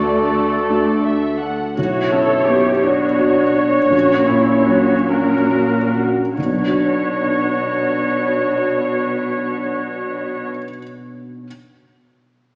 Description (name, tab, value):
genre	cinematic, emotional film score for orchestra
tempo	46-57 BPM (dotted quarters)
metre	6/8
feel	rubato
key	B minor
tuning	A4 = 439 Hz
part	muted studio violin section	melody	0.0-1.8 s	D5 to F#5	-27 LUFS	equal	none
part	mellow clarinet	second line	0.0-1.4 s	F#4	-22 LUFS	equal	none
part	muted studio violin section	second line	0.0-1.6 s	A4	-24 LUFS	equal	none
part	felt-muted upright piano	accompaniment	0.0-11.5 s	A#1 to C#5	-21 LUFS	equal	none
part	muted studio viola section	accompaniment	0.0-10.5 s	A3 to C#5	-19 LUFS	equal	none
part	dark French horn section	sustained chords	0.0-1.4 s	A3	-28 LUFS	equal	none
part	concert harp	arpeggios	0.0-4.0 s	D3 to D5	-29 LUFS	equal	none
part	muted studio cello section	bass	0.0-10.5 s	D2 to B2	-24 LUFS	equal	none
part	muted studio double bass section	bass	0.0-1.6 s	D2	-33 LUFS	equal	none
part	mellow French horn	melody	1.8-10.5 s	C#4 to F#4	-20 LUFS	equal	none
room	wet concert hall reverb, RT60 2.2 s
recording	heard from further back in the room, small speaker sound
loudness	-14 LUFS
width	side -40 dB against mid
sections	0.0-1.8 A section; 1.8-6.4 B section; 6.4-11.4 C section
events	slowing down 0.7-6.4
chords	0.0 D; 1.8 Bmadd9; 3.9 F#/A#; 6.4 Bmadd9